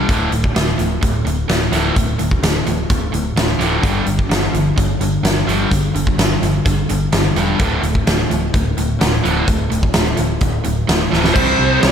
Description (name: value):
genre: hard rock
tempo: 128 BPM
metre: 4/4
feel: straight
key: unclear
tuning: A4 = 440 Hz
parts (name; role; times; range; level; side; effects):
- cranked stack guitar; riff; 0.0-11.9 s; D2 to C4; -21 LUFS; right 7 dB; overdrive
- distorted electric guitar; riff; 0.0-11.9 s; D2 to C4; -22 LUFS; left 8 dB; distortion, slapback echo
- picked electric bass; bass; 0.0-11.9 s; D1 to C2; -21 LUFS; equal; none
- huge arena drum kit; drums; 0.1-11.9 s; crash cymbal, hi-hat, kick drum, snare drum; -18 LUFS; equal; none
- lead guitar through a small cranked amp; melody; 11.3-11.9 s; C5 to D5; -16 LUFS; left 1 dB; overdrive
- distorted electric guitar; riff; 11.3-11.9 s; C3 to C4; -21 LUFS; right 2 dB; overdrive
room: moderate concert hall reverb, RT60 1.9 s, studio ambience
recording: big arena sound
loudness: -14 LUFS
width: side -8 dB against mid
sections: 0.0-11.4 A section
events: drum fill 11.1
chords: 0.1 D5; 3.8 G5; 7.6 D5; 11.4 C5